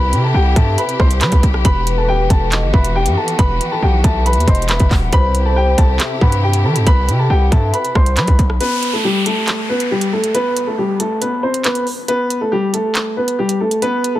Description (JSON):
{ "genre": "hip hop, drill", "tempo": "138 BPM", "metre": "4/4", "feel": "half-time", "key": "unclear", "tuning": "A4 = 440 Hz", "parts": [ { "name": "warm upright piano", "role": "melody", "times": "0.0-14.2 s", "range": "G3 to C6", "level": "-18 LUFS", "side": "left 1 dB", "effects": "low-pass filter, ping-pong delay" }, { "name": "warm studio string section", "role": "sustained chords", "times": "0.0-8.6 s", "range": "C3 to G4", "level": "-24 LUFS", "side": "left 1 dB", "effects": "none" }, { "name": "distorted 808-style bass", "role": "bass", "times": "0.0-8.6 s", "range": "D#1 to G3", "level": "-16 LUFS", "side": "equal", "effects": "distortion" }, { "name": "hollow clarinet-like synth lead", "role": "second line", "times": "0.1-8.2 s", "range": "B4 to G5", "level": "-26 LUFS", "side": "left 3 dB", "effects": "chorus, ping-pong delay" }, { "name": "drill drum kit", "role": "drums", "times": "0.1-14.1 s", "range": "handclaps, hi-hat, kick drum, rim click", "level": "-15 LUFS", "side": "equal", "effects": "none" }, { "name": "downlifter", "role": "sound effects", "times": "8.6-12.1 s", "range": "none", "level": "-24 LUFS", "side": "equal", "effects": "none" } ], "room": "digital ambience", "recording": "dense, heavily limited modern master", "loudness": "-13 LUFS", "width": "side -14 dB against mid", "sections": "0.0-8.6 A section; 8.6-14.2 B section", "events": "break 8.6-14.2", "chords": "0.0 C; 1.6 Emadd9; 5.1 C; 8.6 Gadd9", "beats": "0.34 0.78 1.21 | 1.65 2.08 2.52 2.95 | 3.39 3.82 4.26 4.69 | 5.13 5.56 6.00 6.43 | 6.87 7.30 7.74 8.17 | 8.61 9.04 9.47 9.91 | 10.35 10.78 11.21 11.65 | 12.08 12.52 12.95 13.39 | 13.82" }